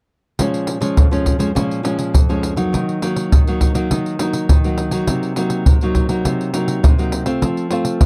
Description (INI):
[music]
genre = samba and choro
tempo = 102 BPM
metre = 4/4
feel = straight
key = Bb minor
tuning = A4 = 441 Hz
[part]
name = nylon-string guitar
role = accompaniment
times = 0.4-8.1 s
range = F2 to F4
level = -21 LUFS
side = equal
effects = none
[part]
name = surdo and pandeiro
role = percussion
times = 0.4-8.1 s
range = none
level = -18 LUFS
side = equal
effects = none
[sound]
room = light reverb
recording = dry, close 1970s-style studio recording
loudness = -17 LUFS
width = mono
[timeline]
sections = 0.4-8.1 A section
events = none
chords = 0.4 Bbm7; 2.7 Ebm; 5.1 Cm7b5; 7.4 F